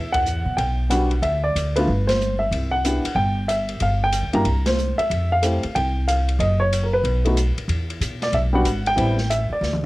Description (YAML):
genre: jazz piano trio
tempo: 186 BPM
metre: 4/4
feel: swing 64% on 8ths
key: E minor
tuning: A4 = 440 Hz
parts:
  - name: warm baby grand piano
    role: melody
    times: 0.0-9.9 s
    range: G3 to Bb5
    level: -22 LUFS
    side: equal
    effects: cassette tape
  - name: upright bass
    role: bass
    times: 0.0-9.9 s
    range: F#1 to B2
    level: -22 LUFS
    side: equal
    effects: none
  - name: open jazz drum kit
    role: drums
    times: 0.1-9.8 s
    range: hi-hat, kick drum, ride cymbal, snare drum, toms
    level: -30 LUFS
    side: equal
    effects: cassette tape
room: light reverb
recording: home recording on cassette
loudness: -18 LUFS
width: side -19 dB against mid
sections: 0.0-9.9 A section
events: band accent 0.1, 2.0, 4.6; drum fill 9.6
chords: 0.0 Emadd9; 1.2 N.C.; 1.9 Gadd11; 2.5 C; 3.8 Gm; 4.5 C7(no3); 5.1 Fmaj7sus2; 6.4 F#5; 7.0 N.C.; 7.7 Esus2; 9.0 Am7